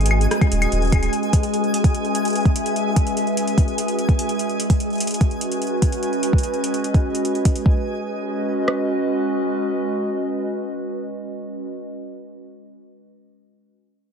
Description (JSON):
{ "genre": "IDM", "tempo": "147 BPM", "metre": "4/4", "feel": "straight", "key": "unclear", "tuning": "A4 = 439 Hz", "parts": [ { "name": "warbly tape-like pad", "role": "sustained chords", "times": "0.0-11.7 s", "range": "G#3 to E5", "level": "-23 LUFS", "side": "equal", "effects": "chorus, built-in reverb, sidechain pumping" }, { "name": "warm sub bass", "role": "bass", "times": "0.0-1.1 s", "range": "D#1 to G#1", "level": "-19 LUFS", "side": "equal", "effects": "none" }, { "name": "booming analog drum machine", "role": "drums", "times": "0.0-7.6 s", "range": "claves, hi-hat, rim click", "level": "-28 LUFS", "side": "equal", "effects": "overdrive" }, { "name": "twinkling granular texture", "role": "texture", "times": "0.0-7.7 s", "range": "G#4 to G#5", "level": "-28 LUFS", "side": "right 1 dB", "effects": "built-in reverb, sidechain pumping" }, { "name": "glitchy drum kit", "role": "drums", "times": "0.4-8.8 s", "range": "kick drum, rim click", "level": "-17 LUFS", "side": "equal", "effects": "none" } ], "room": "moderate digital room reverb, RT60 1.2 s", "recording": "none", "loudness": "-18 LUFS", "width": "side -6 dB against mid", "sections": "0.0-7.7 A section; 7.7-10.9 B section", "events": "none", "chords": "0.0 G#m7; 1.1 C#m7; 6.0 G#m7" }